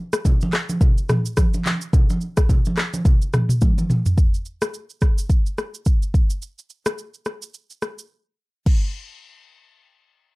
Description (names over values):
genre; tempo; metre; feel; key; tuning
afrobeats; 107 BPM; 4/4; swing 58% on 16ths; none; none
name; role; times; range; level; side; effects
afro-pop drum kit; drums; 0.1-8.8 s; crash cymbal, handclaps, kick drum, rim click, shaker, toms; -18 LUFS; equal; none
congas; percussion; 0.3-4.1 s; none; -25 LUFS; right 1 dB; none
room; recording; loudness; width
little or no reverb; dark, warm production; -18 LUFS; side -24 dB against mid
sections
0.0-4.2 A section; 4.2-8.7 B section; 8.7-10.4 C section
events
drum fill 3.6-4.2; break 8.1-8.7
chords
none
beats
0.25 0.81 1.37 | 1.93 2.49 3.06 3.62 | 4.18 4.74 5.30 5.86 | 6.42 6.98 7.54 8.10 | 8.66